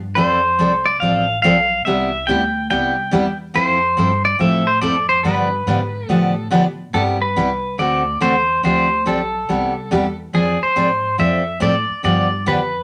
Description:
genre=country, western swing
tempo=141 BPM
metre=4/4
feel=swing 66% on 8ths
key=C major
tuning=A4 = 440 Hz
part: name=upright bass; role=bass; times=0.0-12.8 s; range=A1 to A2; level=-28 LUFS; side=equal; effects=none
part: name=pedal steel guitar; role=melody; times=0.2-12.8 s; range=Ab4 to G5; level=-20 LUFS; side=equal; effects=none
part: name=picked steel-string acoustic guitar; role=accompaniment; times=0.2-12.6 s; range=C3 to A4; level=-20 LUFS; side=equal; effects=none
room=wet studio reverb, RT60 0.6 s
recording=none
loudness=-17 LUFS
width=mono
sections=0.0-6.9 A section; 6.9-12.8 B section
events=none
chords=0.2 F6; 1.9 Cmaj7; 3.6 Fmaj7; 5.2 G9; 6.9 Cmaj7; 7.8 D7; 8.6 G9sus4/D; 9.5 Cmaj7; 10.3 Fm6; 11.2 Dm7/F; 12.0 G7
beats=| 0.17 0.59 1.01 1.44 | 1.86 2.28 2.71 3.13 | 3.55 3.98 4.40 4.82 | 5.25 5.67 6.10 6.52 | 6.94 7.37 7.79 8.22 | 8.64 9.07 9.49 9.92 | 10.34 10.77 11.19 11.62 | 12.04 12.47

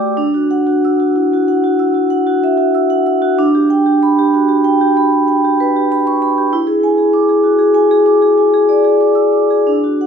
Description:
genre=classical, contemporary piece for solo vibraphone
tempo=95 BPM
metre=5/4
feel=rubato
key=unclear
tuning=A4 = 441 Hz
part: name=vibraphone with medium hard mallets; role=solo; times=0.0-10.1 s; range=A3 to E6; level=-11 LUFS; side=equal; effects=none
room=moderate concert hall reverb, RT60 2.1 s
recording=minimal, uncompressed stereo recording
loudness=-11 LUFS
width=side -7 dB against mid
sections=0.0-10.1 A section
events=none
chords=0.2 Dadd9; 3.4 G/D; 6.5 E9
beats=| 0.16 0.82 1.47 2.10 2.74 | 3.38 4.03 4.65 5.28 5.91 | 6.53 7.14 7.76 8.39 9.03 | 9.69

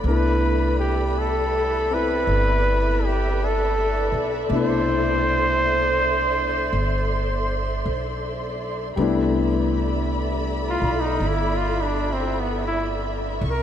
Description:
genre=jazz ballad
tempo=54 BPM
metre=4/4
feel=swing 66% on 8ths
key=C major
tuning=A4 = 438 Hz
part: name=clear grand piano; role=accompaniment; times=0.0-13.4 s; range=B2 to E4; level=-27 LUFS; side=left 3 dB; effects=none
part: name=dark studio string section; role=sustained chords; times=0.0-13.6 s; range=A4 to Db6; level=-28 LUFS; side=equal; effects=none
part: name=upright bass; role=bass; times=0.0-13.6 s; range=G1 to C2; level=-25 LUFS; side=equal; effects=none
part: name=mellow trumpet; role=melody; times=0.1-13.6 s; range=B3 to C5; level=-24 LUFS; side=right 1 dB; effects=none
room=wet huge ambient reverb, RT60 8.1 s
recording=in a vast, echoing space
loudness=-20 LUFS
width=side -10 dB against mid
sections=0.0-9.0 A section; 9.0-13.6 B section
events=trumpet solo 9.0-13.6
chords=0.0 Cmaj13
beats=| 0.05 1.16 2.27 3.39 | 4.50 5.61 6.73 7.84 | 8.96 10.08 11.19 12.30 | 13.41

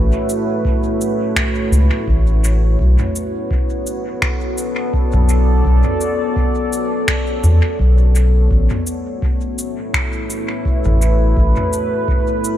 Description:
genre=ambient dub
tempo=84 BPM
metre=4/4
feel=swing 56% on 16ths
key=unclear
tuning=A4 = 440 Hz
part: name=deep dark ambient pad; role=sustained chords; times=0.0-12.6 s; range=A3 to D5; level=-20 LUFS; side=equal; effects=chorus, built-in reverb
part: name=soft dub sub bass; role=bass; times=0.0-11.5 s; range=A1 to E2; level=-12 LUFS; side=equal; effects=none
part: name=organic electronic drum kit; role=drums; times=0.3-12.6 s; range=finger snaps, shaker, toms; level=-23 LUFS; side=equal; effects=overdrive, dub echo
part: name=electronic kick drum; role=drums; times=0.6-12.2 s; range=none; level=-20 LUFS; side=equal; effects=none
room=light reverb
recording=none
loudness=-14 LUFS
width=side -12 dB against mid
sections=0.0-12.6 A section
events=none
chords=0.0 A6; 2.8 Bm7; 8.5 A6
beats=0.65 1.37 2.08 | 2.80 3.51 4.22 4.94 | 5.65 6.37 7.08 7.80 | 8.51 9.22 9.94 10.65 | 11.37 12.08

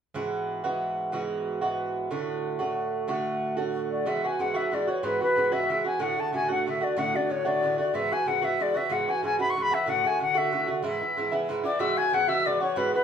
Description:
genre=celtic folk, Celtic jig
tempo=124 BPM (dotted quarters)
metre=6/8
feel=straight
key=E mixolydian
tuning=A4 = 443 Hz
part: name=Irish bouzouki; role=accompaniment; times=0.1-13.0 s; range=G#2 to F#4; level=-28 LUFS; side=right 3 dB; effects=none
part: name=bright reedy wooden flute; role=melody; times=3.9-13.0 s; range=B4 to C#6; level=-26 LUFS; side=left 3 dB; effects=none
part: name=tin whistle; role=second line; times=11.7-13.0 s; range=B5 to G#6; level=-30 LUFS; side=left 5 dB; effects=none
room=wet studio reverb, RT60 0.6 s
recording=heard from further back in the room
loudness=-24 LUFS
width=side -8 dB against mid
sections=0.1-4.1 A section; 4.1-11.8 B section; 11.8-13.0 B section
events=none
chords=0.1 Eadd9; 2.1 D; 4.1 Eadd9; 6.0 D; 7.9 Eadd9; 9.9 D; 10.8 E; 11.8 Eadd9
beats=| 0.15 0.64 | 1.13 1.62 | 2.10 2.59 | 3.08 3.57 | 4.05 4.54 | 5.03 5.51 | 6.00 6.48 | 6.96 7.45 | 7.93 8.42 | 8.90 9.39 | 9.87 10.35 | 10.84 11.32 | 11.80 12.28 | 12.76

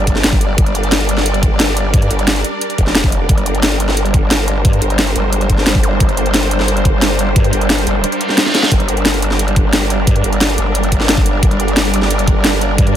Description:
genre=dark technical drum and bass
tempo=177 BPM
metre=4/4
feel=straight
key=G minor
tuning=A4 = 441 Hz
part: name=swarming drone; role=sustained chords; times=0.0-13.0 s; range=G3 to D5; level=-19 LUFS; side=right 1 dB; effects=built-in reverb, sidechain pumping
part: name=growl bass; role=bass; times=0.0-12.9 s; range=F1 to G2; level=-17 LUFS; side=equal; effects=chorus, overdrive
part: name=drum and bass drum kit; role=drums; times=0.1-12.9 s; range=hi-hat, snare drum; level=-16 LUFS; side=equal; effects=overdrive
part: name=electronic kick drum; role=drums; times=0.1-12.9 s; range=none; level=-13 LUFS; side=equal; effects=overdrive
part: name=zap and reverse cymbal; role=sound effects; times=5.8-5.9, 8.2-8.7 s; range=none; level=-22 LUFS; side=right 2 dB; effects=none
room=digital ambience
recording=none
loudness=-11 LUFS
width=side -10 dB against mid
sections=0.0-13.0 A section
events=reverse cymbal 8.2-8.7; drum fill 8.5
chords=0.0 Gm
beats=0.24 | 0.58 0.92 1.26 1.60 | 1.94 2.27 2.61 2.95 | 3.29 3.63 3.97 4.31 | 4.65 4.99 5.33 5.67 | 6.00 6.34 6.68 7.02 | 7.36 7.70 8.04 8.38 | 8.72 9.05 9.39 9.73 | 10.07 10.41 10.75 11.09 | 11.43 11.77 12.11 12.45 | 12.78

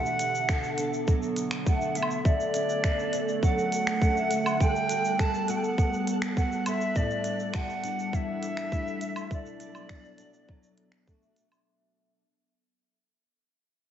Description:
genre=folktronica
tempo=102 BPM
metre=4/4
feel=straight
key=unclear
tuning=A4 = 440 Hz
part: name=silver concert flute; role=melody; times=0.0-11.0 s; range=D5 to A5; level=-31 LUFS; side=right 1 dB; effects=diffuse ambient delay
part: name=warbly tape-like pad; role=sustained chords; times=0.0-11.7 s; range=D3 to A4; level=-33 LUFS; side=right 1 dB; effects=chorus, built-in reverb
part: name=fingerpicked steel-string acoustic guitar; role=arpeggios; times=0.0-12.2 s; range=A2 to A4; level=-33 LUFS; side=left 1 dB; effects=ensemble chorus, diffuse ambient delay
part: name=organic electronic drum kit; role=drums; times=0.1-11.6 s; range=finger snaps, hi-hat, shaker, woodblock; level=-35 LUFS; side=right 1 dB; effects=none
part: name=electronic kick drum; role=drums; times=0.5-11.2 s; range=none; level=-26 LUFS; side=equal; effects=none
part: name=flickering grainy texture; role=texture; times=2.7-11.7 s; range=A4 to F#6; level=-40 LUFS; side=right 2 dB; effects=built-in reverb, lush chorus
room=wet plate reverb, RT60 2.0 s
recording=dreamy mix soaked in reverb, nothing above 7.9 kHz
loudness=-25 LUFS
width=side -10 dB against mid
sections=0.0-11.7 A section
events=fade-out 5.4-11.7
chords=0.0 Bm7; 2.2 Dmaj7; 4.6 Gmaj9; 7.0 A7sus4; 9.3 Bm7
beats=0.48 1.07 1.66 | 2.25 2.84 3.43 4.01 | 4.60 5.19 5.78 6.37 | 6.96 7.54 8.13 8.72 | 9.31 9.90 10.48 11.07

